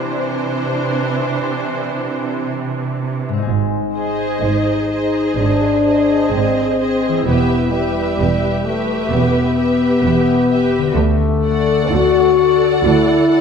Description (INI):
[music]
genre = cinematic, emotional film score for orchestra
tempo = 64 BPM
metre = 4/4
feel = rubato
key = unclear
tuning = A4 = 440 Hz
[part]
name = warm symphonic violin section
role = melody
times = 0.0-13.4 s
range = C5 to F#5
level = -26 LUFS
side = left 2 dB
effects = none
[part]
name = rich studio viola section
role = accompaniment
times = 0.0-13.4 s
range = E3 to A4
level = -23 LUFS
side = right 1 dB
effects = none
[part]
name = concert harp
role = arpeggios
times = 0.0-13.4 s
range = Ab2 to A4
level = -26 LUFS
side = left 6 dB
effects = none
[part]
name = rich symphonic cello section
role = bass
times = 0.0-13.4 s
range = D2 to C3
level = -24 LUFS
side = right 5 dB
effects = none
[part]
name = warm French horn section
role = sustained chords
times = 3.5-13.4 s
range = G3 to F#4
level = -16 LUFS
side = left 3 dB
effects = none
[part]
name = bright symphonic double bass section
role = bass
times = 3.5-13.4 s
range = E1 to D2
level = -22 LUFS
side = right 4 dB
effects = none
[part]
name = dark studio violin section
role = second line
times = 4.0-13.4 s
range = B4 to D5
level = -24 LUFS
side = right 2 dB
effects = none
[sound]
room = wet scoring stage reverb, RT60 1.7 s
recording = minimal, uncompressed stereo recording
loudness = -14 LUFS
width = side -6 dB against mid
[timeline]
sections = 0.0-3.5 A section; 3.5-13.4 B section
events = none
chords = 0.0 Cadd9; 3.5 Ab; 7.3 Em; 11.0 D